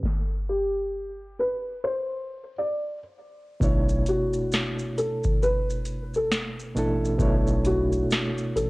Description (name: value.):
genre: lo-fi hip hop.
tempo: 67 BPM.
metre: 4/4.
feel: swing 64% on 16ths.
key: B minor.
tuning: A4 = 444 Hz.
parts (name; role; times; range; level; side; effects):
reed electric piano; accompaniment; 0.0-8.7 s; B2 to C#5; -27 LUFS; right 1 dB; fast tremolo, cassette tape, low-pass filter.
booming analog drum machine; drums; 0.0-8.7 s; hi-hat, kick drum, shaker, snare drum; -26 LUFS; equal; cassette tape.
felt-muted upright piano; melody; 0.5-8.7 s; F#4 to D5; -27 LUFS; left 1 dB; low-pass filter, cassette tape.
saturated sub bass; bass; 3.6-8.7 s; A1 to B1; -29 LUFS; equal; none.
room: light reverb, digital ambience.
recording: home recording on cassette, low-pass filter.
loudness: -23 LUFS.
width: side -22 dB against mid.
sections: 0.0-3.6 A section; 3.6-8.7 B section.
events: filter sweep 0.0-3.6; stop 0.0-3.6.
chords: 0.0 N.C.; 3.6 Bm11.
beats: | 0.03 0.93 1.82 2.72 | 3.61 4.51 5.40 6.30 | 7.19 8.09.